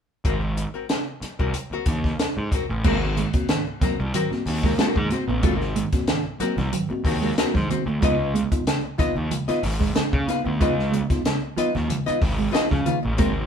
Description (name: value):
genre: funk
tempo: 93 BPM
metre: 4/4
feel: straight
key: Ab mixolydian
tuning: A4 = 441 Hz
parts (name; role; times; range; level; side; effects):
- archtop guitar, miked and amplified; accompaniment; 0.2-13.5 s; C4 to F5; -28 LUFS; left 5 dB; none
- fuzz picked electric bass; bass; 0.2-13.5 s; Ab1 to Db3; -26 LUFS; equal; overdrive
- compact cocktail drum kit; drums; 0.2-13.3 s; crash cymbal, hi-hat, kick drum, snare drum; -24 LUFS; equal; none
- mellow electric guitar; riff; 2.8-13.3 s; Eb3 to Cb4; -28 LUFS; right 7 dB; none
- mellow tine electric piano; stabs; 2.8-13.3 s; Ab2 to Gb4; -29 LUFS; equal; medium stereo tremolo
- congas; percussion; 2.8-13.3 s; none; -34 LUFS; right 3 dB; none
room: moderate studio reverb, RT60 0.8 s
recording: band playing live in one room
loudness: -21 LUFS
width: side -7 dB against mid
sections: 0.2-2.8 A section; 2.8-13.5 B section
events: none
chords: 0.2 Ab9; 8.0 Db9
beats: | 0.25 0.90 1.55 2.19 | 2.84 3.49 4.14 4.79 | 5.43 6.08 6.73 7.38 | 8.02 8.67 9.31 9.96 | 10.61 11.25 11.90 12.55 | 13.19